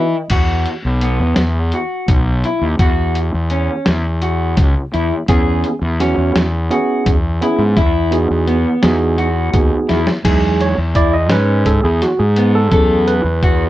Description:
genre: progressive instrumental, band music in an uneven meter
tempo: 169 BPM (eighths)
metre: 7/8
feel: straight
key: E major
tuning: A4 = 439 Hz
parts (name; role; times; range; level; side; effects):
- bright tine electric piano; accompaniment; 0.0-0.3, 5.3-13.7 s; F#3 to D#5; -17 LUFS; right 3 dB; none
- electric guitar at the edge of break-up; arpeggios; 0.0-13.6 s; B3 to A4; -19 LUFS; left 1 dB; none
- fuzz fingered electric bass; bass; 0.0-13.7 s; B1 to E3; -16 LUFS; equal; overdrive
- lo-fi sampler-style drum kit; drums; 0.3-13.6 s; crash cymbal, hi-hat, kick drum, snare drum; -17 LUFS; equal; none
room: light reverb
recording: worn, warbling old tape, cassette tape, warbly pitch drift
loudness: -13 LUFS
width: side -15 dB against mid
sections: 0.3-10.3 A section; 10.3-13.7 B section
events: tine electric piano fill 0.0-0.3; drum fill 9.9-10.3; tine electric piano solo 10.3-13.7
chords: 0.3 Esus2; 2.8 C#madd11; 5.3 E69; 7.8 Emaj7; 10.3 Emaj9; 12.7 Dmaj7/E (rootless)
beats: | 0.32 0.67 1.02 1.38 1.74 2.09 2.44 | 2.80 3.15 3.51 3.87 4.22 4.58 4.93 | 5.29 5.64 6.00 6.35 6.71 7.06 7.42 | 7.77 8.12 8.48 8.83 9.19 9.54 9.90 | 10.25 10.61 10.96 11.31 11.67 12.02 12.38 | 12.73 13.08 13.44

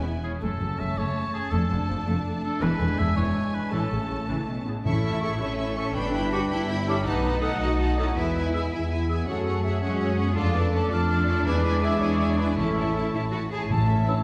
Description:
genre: cinematic, heroic adventure film score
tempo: 109 BPM (dotted quarters)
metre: 6/8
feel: straight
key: A major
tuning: A4 = 440 Hz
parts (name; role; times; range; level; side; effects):
- warm symphonic violin section; melody; 0.0-14.2 s; E5 to C#6; -40 LUFS; equal; none
- warm symphonic violin section; second line; 0.0-14.2 s; A3 to G5; -38 LUFS; equal; none
- warm symphonic viola section; accompaniment; 0.0-14.2 s; C#3 to A4; -37 LUFS; equal; none
- mellow French horn section; sustained chords; 0.0-13.5 s; G3 to E4; -35 LUFS; equal; none
- rich studio cello section; bass; 0.0-14.2 s; E2 to G#4; -32 LUFS; equal; none
- rich symphonic double bass section; bass; 0.0-14.2 s; E1 to F#2; -31 LUFS; equal; none
- bright oboe; second line; 0.2-4.3 s; G#4 to E5; -35 LUFS; equal; none
- warm trumpet section; stabs; 4.7-13.1 s; G#4 to F#5; -35 LUFS; equal; none
- timpani; percussion; 4.9-5.4, 12.6-14.2 s; A2; -33 LUFS; equal; none
- clear clarinet; second line; 5.2-13.5 s; F4 to B4; -38 LUFS; equal; none
- concert flute; second line; 5.2-14.1 s; G#5 to F6; -36 LUFS; equal; none
- clear trombone section; sustained chords; 14.1 s; E3 to C#4; -32 LUFS; equal; none
room: wet scoring stage reverb, RT60 1.7 s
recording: heard from further back in the room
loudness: -25 LUFS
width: mono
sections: 0.0-4.9 A section; 4.9-13.7 A section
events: none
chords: 0.4 F#m; 1.5 Dm/F; 2.6 E7; 3.7 A; 6.0 G; 7.1 B7; 8.2 E; 9.3 F#madd9; 10.4 Dm/F; 11.5 E7; 12.6 A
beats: | 0.43 0.98 | 1.53 2.08 | 2.62 3.17 | 3.73 4.30 | 4.86 5.42 | 5.97 6.51 | 7.06 7.61 | 8.16 8.72 | 9.28 9.83 | 10.38 10.92 | 11.46 12.01 | 12.57 13.14 | 13.70

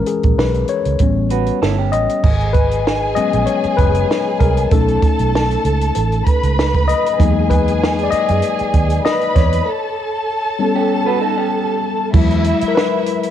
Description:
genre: lush 1970s-style soul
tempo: 97 BPM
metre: 4/4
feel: swing 54% on 16ths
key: G# minor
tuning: A4 = 440 Hz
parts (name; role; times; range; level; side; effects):
- mellow tine electric piano; accompaniment; 0.0-13.3 s; E3 to D#5; -18 LUFS; left 7 dB; cassette tape
- compact cocktail drum kit; drums; 0.1-13.3 s; crash cymbal, hi-hat, kick drum, snare drum; -17 LUFS; right 2 dB; none
- vintage muted fingered electric bass; bass; 0.2-12.7 s; F#1 to F#2; -18 LUFS; right 2 dB; none
- electric guitar through a small old amp; riff; 1.3-2.2, 10.8-12.1 s; C#4 to B4; -22 LUFS; right 13 dB; cassette tape
- warm studio string section; second line; 2.2-13.3 s; E4 to B5; -20 LUFS; right 2 dB; cassette tape
room: light reverb, studio reverb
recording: home recording on cassette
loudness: -14 LUFS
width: side -10 dB against mid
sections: 0.0-2.2 A section; 2.2-12.1 B section; 12.1-13.3 C section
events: tine electric piano solo 0.0-2.2, 2.2-12.1, 12.1-13.3; break 9.7-12.1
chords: 0.0 A#m7b5; 1.0 A9; 2.2 G#m11; 4.7 B9; 7.2 Emaj9#11; 9.7 Gadd9(#11); 12.1 E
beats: 0.39 1.00 1.62 | 2.24 2.86 3.48 4.10 | 4.72 5.34 5.96 6.58 | 7.20 7.81 8.43 9.05 | 9.67 10.29 10.91 11.53 | 12.14 12.76

